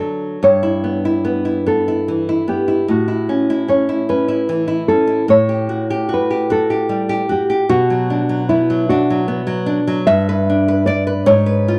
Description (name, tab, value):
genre	romantic duo for nylon-string guitar and classical guitar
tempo	50 BPM (dotted quarters)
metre	6/8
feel	rubato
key	unclear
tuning	A4 = 440 Hz
part	nylon-string guitar	melody	0.0-11.8 s	E4 to E5	-19 LUFS	equal	none
part	nylon-string guitar	accompaniment	0.0-11.8 s	G2 to D5	-20 LUFS	equal	none
room	small room ambience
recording	dry, close 1970s-style studio recording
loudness	-17 LUFS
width	mono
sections	0.4-11.8 A section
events	none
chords	0.4 Em/G; 2.9 A; 5.3 A6; 7.7 Bm; 10.1 G; 11.3 C#7/G#